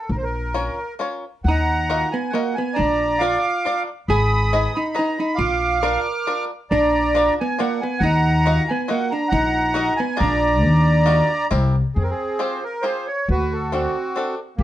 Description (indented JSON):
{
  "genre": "musette waltz",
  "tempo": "137 BPM",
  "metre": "3/4",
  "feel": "swing 54% on 8ths",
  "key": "Eb harmonic minor",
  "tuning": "A4 = 444 Hz",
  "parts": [
    { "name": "accordion", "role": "melody", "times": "0.0-14.6 s", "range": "Bb3 to F6", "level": "-21 LUFS", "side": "right 1 dB", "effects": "light tremolo tuning, plate reverb" },
    { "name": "upright bass", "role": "bass", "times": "0.1-14.6 s", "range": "G1 to F2", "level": "-20 LUFS", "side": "left 1 dB", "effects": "none" },
    { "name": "bluegrass banjo", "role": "accompaniment", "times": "0.5-14.4 s", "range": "C4 to Eb5", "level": "-26 LUFS", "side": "left 3 dB", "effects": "none" },
    { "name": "hollow-body jazz guitar", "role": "second line", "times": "1.5-11.5 s", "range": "Bb3 to Bb4", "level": "-24 LUFS", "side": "right 2 dB", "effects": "none" }
  ],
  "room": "moderate studio reverb, RT60 0.6 s",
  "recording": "heard from further back in the room, nothing above 10.7 kHz",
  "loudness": "-18 LUFS",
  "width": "side -13 dB against mid",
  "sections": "0.0-1.4 A section; 1.4-12.0 B section; 12.0-14.6 C section",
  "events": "none",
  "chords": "0.1 Bbm; 1.4 Ebmadd9; 2.8 Bb; 4.1 Abm; 5.4 Bb; 8.0 Ebmadd9; 9.3 Ebm/Bb; 10.2 Bb7; 10.6 Ebmadd9; 11.5 C7; 12.0 Fmadd9; 13.3 D7"
}